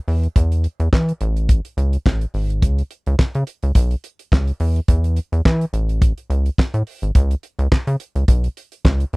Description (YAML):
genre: early-eighties boogie funk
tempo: 106 BPM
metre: 4/4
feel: swing 56% on 16ths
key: unclear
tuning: A4 = 438 Hz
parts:
  - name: rubbery square bass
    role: bass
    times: 0.1-9.2 s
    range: G#1 to E3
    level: -18 LUFS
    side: equal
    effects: none
  - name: damped 70s drum kit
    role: drums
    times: 0.1-9.2 s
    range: handclaps, hi-hat, kick drum, snare drum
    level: -14 LUFS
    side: equal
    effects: none
room: little or no reverb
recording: dry, close 1970s-style studio recording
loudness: -17 LUFS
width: side -28 dB against mid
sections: 0.0-9.2 A section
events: none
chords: none